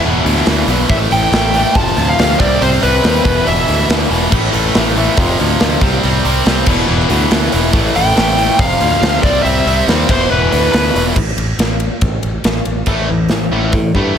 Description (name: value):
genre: hard rock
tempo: 140 BPM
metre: 4/4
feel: straight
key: A minor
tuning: A4 = 439 Hz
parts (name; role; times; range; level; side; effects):
- distorted electric guitar; riff; 0.0-14.2 s; E2 to C4; -15 LUFS; left 1 dB; overdrive
- modern bright picked electric bass; bass; 0.0-14.2 s; E1 to A2; -18 LUFS; equal; none
- big rock drum kit; drums; 0.3-14.1 s; crash cymbal, hi-hat, kick drum, ride cymbal, snare drum; -16 LUFS; equal; none
- bluesy overdriven lead guitar; melody; 0.9-3.9, 8.0-11.0 s; B4 to A5; -16 LUFS; equal; distortion
room: light reverb, small room reverb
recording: none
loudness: -11 LUFS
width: side -8 dB against mid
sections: 0.0-11.2 A section; 11.2-12.9 B section; 12.9-14.2 C section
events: none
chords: 0.0 E5; 0.9 A5; 1.8 F; 2.4 C5; 3.3 E5; 4.3 A5; 5.2 F5; 5.8 C5; 6.7 E5; 7.7 A5; 8.6 F5; 9.2 C; 10.1 E5; 11.2 N.C.; 12.9 A5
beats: 0.05 0.48 | 0.90 1.33 1.76 2.19 | 2.61 3.04 3.47 3.90 | 4.32 4.75 5.18 5.61 | 6.03 6.46 6.89 7.32 | 7.74 8.17 8.60 9.02 | 9.45 9.88 10.31 10.73 | 11.16 11.59 12.02 12.45 | 12.88 13.31 13.74 14.18